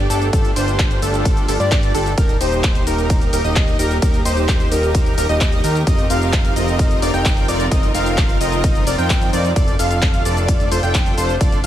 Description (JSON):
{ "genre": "EDM, festival progressive house", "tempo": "130 BPM", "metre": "4/4", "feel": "straight", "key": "unclear", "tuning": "A4 = 438 Hz", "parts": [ { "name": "rich studio string section", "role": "sustained chords", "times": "0.0-11.7 s", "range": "F3 to Bb4", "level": "-26 LUFS", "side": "right 1 dB", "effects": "sidechain pumping" }, { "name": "wide unison lead", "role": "arpeggios", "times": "0.0-11.7 s", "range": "A4 to G5", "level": "-24 LUFS", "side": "left 1 dB", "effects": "sidechain pumping, digital delay" }, { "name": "dense compressed supersaw", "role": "riff", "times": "0.0-11.7 s", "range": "C4 to G5", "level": "-23 LUFS", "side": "equal", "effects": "sidechain pumping, digital delay" }, { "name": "fat analog bass", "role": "bass", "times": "0.0-11.7 s", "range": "Eb1 to G2", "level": "-21 LUFS", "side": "equal", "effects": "sidechain pumping" }, { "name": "big-room dance drum kit", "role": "drums", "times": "0.1-11.7 s", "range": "cabasa, handclaps, hi-hat, ride cymbal", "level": "-25 LUFS", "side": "left 1 dB", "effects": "studio reverb" }, { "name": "electronic kick drum", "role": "drums", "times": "0.3-11.5 s", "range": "none", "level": "-17 LUFS", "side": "equal", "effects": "studio reverb" } ], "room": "little or no reverb", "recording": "none", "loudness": "-14 LUFS", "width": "side -12 dB against mid", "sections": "0.0-11.7 A section", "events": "none", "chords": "0.0 Gsus2; 2.2 Eb; 5.9 F7sus4; 9.6 Dm/F", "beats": "| 0.33 0.79 1.25 1.72 | 2.18 2.64 3.10 3.56 | 4.02 4.49 4.95 5.41 | 5.87 6.33 6.79 7.25 | 7.71 8.18 8.64 9.10 | 9.56 10.02 10.48 10.95 | 11.41" }